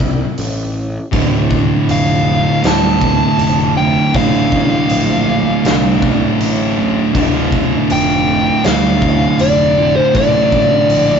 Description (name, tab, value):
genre	stoner and doom metal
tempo	80 BPM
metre	4/4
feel	straight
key	D minor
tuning	A4 = 440 Hz
part	fuzz picked electric bass	bass	0.0-11.2 s	D1 to C2	-21 LUFS	left 1 dB	overdrive
part	big rock drum kit	drums	0.0-11.1 s	hi-hat, kick drum, snare drum	-18 LUFS	left 1 dB	none
part	thick fuzz guitar	riff	1.1-11.2 s	D2 to D3	-18 LUFS	left 4 dB	distortion
part	thick fuzz guitar	riff	1.1-11.2 s	D2 to D3	-16 LUFS	right 6 dB	distortion
part	fuzz lead guitar	melody	1.9-11.2 s	C5 to A5	-16 LUFS	equal	distortion
room	light reverb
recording	rough rehearsal-room recording, warm saturation, nothing above 7.7 kHz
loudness	-11 LUFS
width	side -7 dB against mid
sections	0.0-11.2 A section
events	none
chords	0.0 Dm